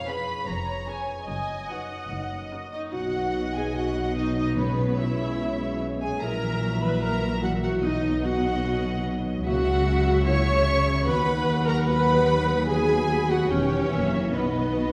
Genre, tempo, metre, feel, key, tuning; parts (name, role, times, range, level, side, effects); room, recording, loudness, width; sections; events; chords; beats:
classical, dramatic, fast romantic movement for symphony orchestra; 147 BPM; 4/4; straight; B major; A4 = 441 Hz
rich symphonic violin section; melody; 0.0-14.9 s; C#5 to B5; -39 LUFS; equal
warm symphonic violin section; second line; 0.0-14.9 s; B4 to C#6; -34 LUFS; equal
concert harp; arpeggios; 0.0-14.9 s; E#2 to B4; -34 LUFS; equal
warm symphonic viola section; accompaniment; 0.1-14.9 s; B3 to C#5; -29 LUFS; equal
rich symphonic cello section; bass; 0.5-14.9 s; D#2 to C#3; -34 LUFS; equal
rich symphonic double bass section; bass; 0.5-14.9 s; E1 to D#2; -33 LUFS; equal
mellow French horn section; sustained chords; 2.9-14.9 s; F#3 to G4; -34 LUFS; equal
timpani; percussion; 4.6-5.2 s; B2; -36 LUFS; equal
wet scoring stage reverb, RT60 1.7 s; heard from further back in the room; -25 LUFS; mono
0.0-2.9 A section; 2.9-14.9 B section
0.0 C#7/E#; 1.3 B/F#; 2.1 F#; 2.9 B; 4.6 C#m7/B; 6.2 F#7/A#; 7.8 B; 9.5 F#7/C#; 11.1 B/D#; 12.7 B7/D#; 13.5 Em; 13.9 F#7; 14.3 B
0.07 0.47 0.87 | 1.28 1.70 2.11 2.52 | 2.93 3.35 3.76 4.17 | 4.58 4.99 5.40 5.81 | 6.22 6.62 7.03 7.43 | 7.84 8.24 8.65 9.05 | 9.45 9.86 10.27 10.67 | 11.07 11.47 11.88 12.29 | 12.69 13.10 13.51 13.92 | 14.34 14.77